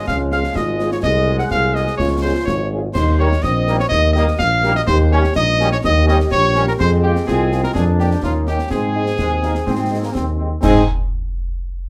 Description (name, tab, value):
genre	military-style march for wind band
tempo	125 BPM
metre	2/4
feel	straight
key	Ab major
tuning	A4 = 440 Hz
part	warm cornet	melody	0.0-10.8 s	F4 to Gb5	-24 LUFS	equal	none
part	clear woodwind section	second line	0.0-10.8 s	Eb4 to Gb5	-31 LUFS	equal	none
part	mellow wooden piccolo	second line	0.0-10.9 s	F5 to Gb6	-28 LUFS	equal	none
part	warm euphonium	second line	0.0-10.4 s	Bb3 to Ab4	-27 LUFS	equal	none
part	mellow trombone section	sustained chords	0.0-10.8 s	F3 to Eb4	-28 LUFS	equal	none
part	mellow tuba	bass	0.1-10.8 s	Ab1 to Ab2	-20 LUFS	equal	none
part	concert snare drum, concert bass drum and clash cymbals	drums	0.1-10.9 s	none	-28 LUFS	equal	none
part	mellow French horn section	accompaniment	0.3-10.8 s	Ab3 to Ab4	-28 LUFS	equal	none
room	wet studio reverb, RT60 0.6 s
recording	heard from further back in the room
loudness	-17 LUFS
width	mono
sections	0.0-10.6 A section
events	none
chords	0.0 Db; 1.0 Ab7/C; 2.0 Db; 3.0 Eb; 4.9 Eb7; 6.8 Fm; 7.8 Bb7/F; 8.2 Eb; 8.7 Ab